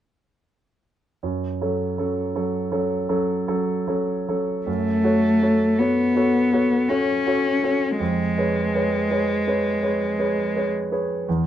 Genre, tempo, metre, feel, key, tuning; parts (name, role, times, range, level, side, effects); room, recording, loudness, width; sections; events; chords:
classical, romantic duo for cello and grand piano; 54 BPM; 3/4; rubato; F# minor; A4 = 440 Hz
clear concert grand piano; accompaniment; 1.2-11.5 s; E2 to C#5; -23 LUFS; right 1 dB
warm cello; melody; 4.7-10.7 s; G#3 to C#4; -20 LUFS; left 1 dB
light reverb; dark, warm production; -20 LUFS; side -11 dB against mid
1.2-4.7 A section; 4.7-11.5 B section
1.2 F#m; 8.0 C#7/E#